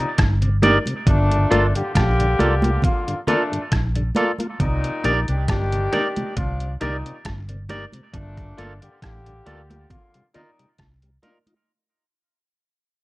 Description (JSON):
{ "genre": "lovers rock reggae", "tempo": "68 BPM", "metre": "4/4", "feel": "swing 54% on 16ths", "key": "C dorian", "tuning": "A4 = 441 Hz", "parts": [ { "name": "clear horn section", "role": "second line", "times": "0.0-10.7 s", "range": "Bb2 to G4", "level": "-26 LUFS", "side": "left 1 dB", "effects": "none" }, { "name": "tonewheel organ", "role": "accompaniment", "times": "0.0-11.5 s", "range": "G2 to F4", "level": "-28 LUFS", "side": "left 1 dB", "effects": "chorus vibrato, stopped rotary speaker" }, { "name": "vintage muted fingered electric bass", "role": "bass", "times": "0.2-11.2 s", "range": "G1 to D2", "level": "-22 LUFS", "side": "equal", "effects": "none" }, { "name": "detuned 8-bit digital drum machine", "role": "drums", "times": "0.2-11.7 s", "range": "hi-hat, kick drum, rim click", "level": "-22 LUFS", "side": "equal", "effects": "none" }, { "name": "mellow tine electric piano", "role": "accompaniment", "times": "0.6-11.4 s", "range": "Eb4 to Eb5", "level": "-24 LUFS", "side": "left 1 dB", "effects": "medium stereo tremolo, plate reverb" }, { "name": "twangy electric guitar", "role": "stabs", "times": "0.6-11.4 s", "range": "Bb3 to D5", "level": "-25 LUFS", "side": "right 2 dB", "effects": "analog delay, plate reverb" }, { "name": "congas", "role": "percussion", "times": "0.6-11.7 s", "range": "none", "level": "-28 LUFS", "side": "right 2 dB", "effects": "none" } ], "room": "light reverb", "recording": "cassette tape", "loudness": "-18 LUFS", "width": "side -20 dB against mid", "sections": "0.0-11.7 A section", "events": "fade-out 0.0-11.7", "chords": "0.0 Cm9; 1.1 Gm9; 4.6 Cm9; 8.1 Gm9; 9.9 Cm11", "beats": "0.18 | 1.07 1.95 2.83 3.72 | 4.60 5.48 6.37 7.25 | 8.13 9.02 9.90 10.78" }